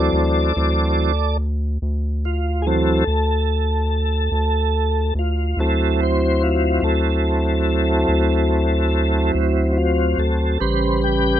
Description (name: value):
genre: slow blues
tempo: 48 BPM (dotted quarters)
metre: 12/8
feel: straight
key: D mixolydian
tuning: A4 = 440 Hz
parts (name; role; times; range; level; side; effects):
- tonewheel organ; sustained chords; 0.0-11.4 s; C#3 to G5; -19 LUFS; equal; chorus vibrato, slow rotary speaker
- round analog bass; bass; 0.0-11.4 s; A1 to D2; -20 LUFS; equal; none
room: little or no reverb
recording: rough home demo mix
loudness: -17 LUFS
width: side -11 dB against mid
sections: 0.0-11.4 A section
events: tonewheel organ solo 0.0-11.4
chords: 0.0 D9; 10.6 A9